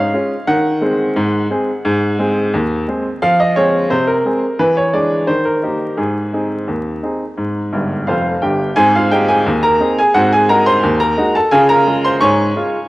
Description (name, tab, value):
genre	ragtime piano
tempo	87 BPM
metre	2/4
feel	straight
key	Ab major from 3.2 s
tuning	A4 = 439 Hz
part	bright upright piano	solo	0.0-12.9 s	F1 to Db6	-13 LUFS	equal	cassette tape
room	moderate lush hall reverb, RT60 2.5 s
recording	home recording on cassette, vinyl crackle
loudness	-13 LUFS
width	side -19 dB against mid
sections	0.0-8.8 A section; 8.8-12.9 B section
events	upright piano fill 7.7-8.8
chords	0.5 Ab7/Eb; 1.9 Ab7; 3.2 Fm; 4.6 E7; 5.3 Eb; 6.0 Ab; 10.2 Ab7; 11.5 Db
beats	| 0.48 1.17 | 1.85 2.54 | 3.22 3.91 | 4.59 5.28 | 5.98 6.68 | 7.38 8.07 | 8.77 9.46 | 10.15 10.84 | 11.53 12.22